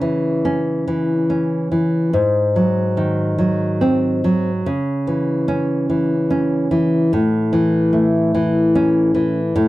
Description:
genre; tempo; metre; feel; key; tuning
romantic piece for solo classical guitar; 48 BPM (dotted quarters); 6/8; rubato; C# minor; A4 = 440 Hz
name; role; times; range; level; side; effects
nylon-string guitar; solo; 0.0-9.7 s; G#2 to C#4; -15 LUFS; equal; none
room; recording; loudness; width
moderate small room ambience, RT60 0.5 s; dry, close 1970s-style studio recording; -15 LUFS; side -17 dB against mid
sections
0.0-9.7 A section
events
none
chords
0.0 C#m; 2.1 G#7; 4.7 C#m; 7.1 A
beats
0.87 | 2.12 3.38 | 4.65 5.89 | 7.11 8.32 | 9.55

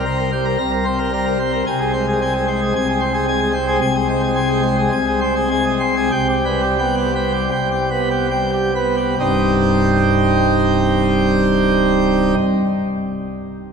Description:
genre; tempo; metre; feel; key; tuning
classical, organ toccata; 65-113 BPM; 4/4; straight; C minor; A4 = 440 Hz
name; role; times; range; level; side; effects
pipe organ, plenum; solo; 0.0-12.3 s; C1 to Bb5; -15 LUFS; equal; none
room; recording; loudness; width
wet cathedral reverb, RT60 4.4 s; heard from further back in the room; -15 LUFS; side -6 dB against mid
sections
0.0-9.2 A section; 9.2-13.7 B section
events
slowing down 2.7-9.2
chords
0.0 C5; 1.7 Ab/C; 6.1 G/C; 9.2 Cm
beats
0.06 0.60 1.14 | 1.67 2.20 2.74 3.27 | 3.81 4.36 4.92 5.51 | 6.14 6.80 7.52 8.32 | 9.20 10.12 11.04 11.97

